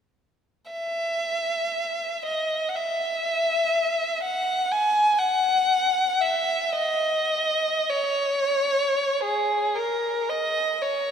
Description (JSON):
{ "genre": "classical, free, expressive piece for unaccompanied violin", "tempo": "37-63 BPM", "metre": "4/4", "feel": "rubato", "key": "C# dorian", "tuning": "A4 = 442 Hz", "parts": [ { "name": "warm violin", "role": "solo", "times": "0.7-11.1 s", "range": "G#4 to G#5", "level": "-22 LUFS", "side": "equal", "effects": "none" } ], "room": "wet church reverb, RT60 3.4 s", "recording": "none", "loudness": "-22 LUFS", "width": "side -8 dB against mid", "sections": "0.7-9.2 A section; 9.2-11.1 B section", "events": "none", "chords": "none" }